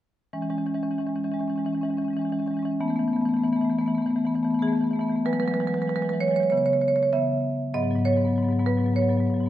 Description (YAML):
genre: classical, contemporary piece for solo marimba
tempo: 97 BPM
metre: 4/4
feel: rubato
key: E major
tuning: A4 = 440 Hz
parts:
  - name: marimba with medium hard mallets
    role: solo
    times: 0.3-9.5 s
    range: G#2 to E5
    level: -22 LUFS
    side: equal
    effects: none
room: wet recital hall reverb, RT60 1.5 s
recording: minimal, uncompressed stereo recording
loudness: -22 LUFS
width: side -13 dB against mid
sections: 0.3-5.3 A section; 5.3-9.5 B section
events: none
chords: 0.3 E6; 2.8 Eadd11; 5.3 Eadd9; 6.5 C#m7; 7.7 G#m7